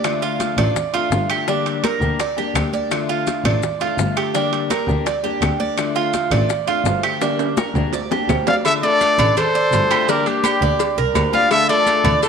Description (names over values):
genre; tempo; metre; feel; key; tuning
latin, Cuban son and guajira; 167 BPM; 4/4; straight; D minor; A4 = 440 Hz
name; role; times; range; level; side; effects
picked steel-string acoustic guitar; accompaniment; 0.0-12.3 s; D3 to G4; -25 LUFS; left 11 dB; none
Cuban tres; arpeggios; 0.0-12.3 s; D4 to D5; -22 LUFS; right 8 dB; none
bongos and cowbell; percussion; 0.0-12.3 s; none; -27 LUFS; left 10 dB; none
claves; percussion; 0.0-12.2 s; none; -33 LUFS; left 12 dB; none
congas; percussion; 0.0-12.3 s; none; -28 LUFS; equal; none
maracas; percussion; 0.0-12.3 s; none; -36 LUFS; left 13 dB; none
timbales and agogo bells; percussion; 0.0-12.3 s; none; -27 LUFS; right 10 dB; none
warm double bass; bass; 0.6-12.1 s; G1 to D2; -22 LUFS; equal; none
warm trumpet; melody; 8.5-12.3 s; G4 to F5; -17 LUFS; equal; none
bright reedy concert flute; second line; 8.5-12.3 s; D4 to D5; -25 LUFS; left 10 dB; none
room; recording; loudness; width
moderate echo chamber reverb, RT60 2.1 s; 1960s-style stereo with parts hard left and right; -16 LUFS; side -6 dB against mid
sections
0.0-8.7 A section; 8.7-12.3 B section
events
drum fill 7.2-8.7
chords
0.0 Dm; 1.5 Gm; 2.9 Dm; 4.3 Gm; 5.8 Dm; 7.2 Gm; 8.7 Dm; 10.1 Gm; 11.5 Dm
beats
| 0.05 0.40 0.76 1.12 | 1.48 1.84 2.19 2.55 | 2.91 3.27 3.63 3.99 | 4.35 4.71 5.06 5.42 | 5.78 6.14 6.50 6.86 | 7.22 7.57 7.93 8.29 | 8.65 9.01 9.37 9.72 | 10.08 10.44 10.80 11.16 | 11.51 11.87 12.23